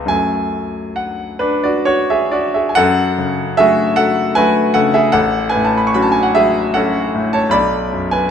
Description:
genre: classical, romantic nocturne for solo piano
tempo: 65-78 BPM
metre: 3/4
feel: rubato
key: F# minor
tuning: A4 = 440 Hz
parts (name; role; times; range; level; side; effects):
- clear concert grand piano; solo; 0.0-8.3 s; A1 to C#6; -13 LUFS; equal; none
room: wet recital hall reverb, RT60 1.5 s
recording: none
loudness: -13 LUFS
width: side -8 dB against mid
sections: 0.0-2.8 A section; 2.8-8.3 B section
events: none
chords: 0.1 F#m; 5.1 F#m/A; 7.5 Bm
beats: | 0.11 0.97 1.87 | 2.77 3.58 4.36 | 5.14 5.96 6.76 | 7.54

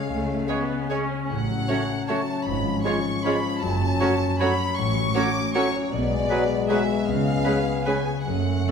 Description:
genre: classical, orchestral ballroom waltz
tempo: 154 BPM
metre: 3/4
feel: uneven beats, rubato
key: F# minor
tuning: A4 = 440 Hz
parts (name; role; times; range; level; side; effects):
- rich chamber violin section; melody; 0.0-8.7 s; C#5 to D6; -30 LUFS; left 3 dB; none
- warm chamber viola section; accompaniment; 0.0-8.7 s; F#3 to F#4; -30 LUFS; right 2 dB; none
- warm French horn section; sustained chords; 0.0-8.7 s; E#3 to C#4; -28 LUFS; left 4 dB; none
- concert harp; arpeggios; 0.0-8.7 s; F#2 to C#5; -29 LUFS; left 6 dB; none
- dark chamber cello section; bass; 0.1-8.6 s; F#2 to C#3; -32 LUFS; right 4 dB; none
- dark studio double bass section; bass; 0.1-8.6 s; F#1 to C#2; -30 LUFS; right 4 dB; none
- bright clarinet; second line; 0.5-8.7 s; E#4 to G#4; -36 LUFS; equal; none
- clear chamber violin section; second line; 0.5-8.7 s; E#4 to C#5; -36 LUFS; left 1 dB; none
- clear oboe; second line; 0.5-8.7 s; B4 to C#5; -34 LUFS; right 1 dB; none
- warm bassoon; accompaniment; 0.5-8.7 s; C#3 to A3; -31 LUFS; right 3 dB; none
room: wet scoring stage reverb, RT60 2.1 s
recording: minimal, uncompressed stereo recording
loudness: -21 LUFS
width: side -6 dB against mid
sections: 0.0-8.7 A section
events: none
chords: 0.0 C#; 1.3 F#m/A; 2.5 C#7/G#; 3.6 F#m; 4.8 F#m/A; 5.9 G#m7b5/B; 7.1 C#7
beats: | 0.10 0.48 0.90 | 1.29 1.68 2.08 | 2.46 2.85 3.25 | 3.63 4.00 4.40 | 4.78 5.16 5.55 | 5.92 6.30 6.69 | 7.07 7.45 7.87 | 8.27 8.69

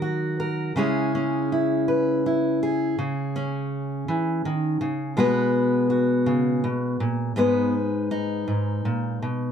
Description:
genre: folk, solo fingerstyle acoustic guitar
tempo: 54 BPM (dotted quarters)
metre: 6/8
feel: straight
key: G# minor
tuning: A4 = 440 Hz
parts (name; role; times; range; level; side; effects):
- fingerpicked steel-string acoustic guitar; solo; 0.0-9.5 s; G#2 to B4; -22 LUFS; equal; none
room: moderate studio reverb, RT60 0.8 s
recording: none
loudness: -21 LUFS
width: side -8 dB against mid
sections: 0.0-9.5 A section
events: none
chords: 0.0 D#m; 0.8 C#m; 5.2 G#m7/B; 7.4 G#m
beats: | 0.76 1.88 | 2.98 4.08 | 5.17 6.26 | 7.36 8.47

